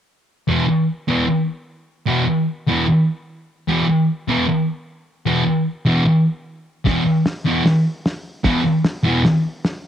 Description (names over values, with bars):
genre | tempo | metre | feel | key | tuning
garage rock duo or trio | 151 BPM | 4/4 | straight | unclear | A4 = 440 Hz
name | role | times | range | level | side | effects
thick fuzz guitar | riff | 0.5-9.2 s | E2 to E3 | -16 LUFS | equal | distortion, cassette tape
cloth-damped thuddy drum kit | drums | 6.9-9.7 s | hi-hat, kick drum, snare drum | -21 LUFS | equal | cassette tape
room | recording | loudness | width
light reverb, small room ambience | home recording on cassette | -16 LUFS | side -10 dB against mid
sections
0.5-9.9 A section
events
none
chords
0.5 E5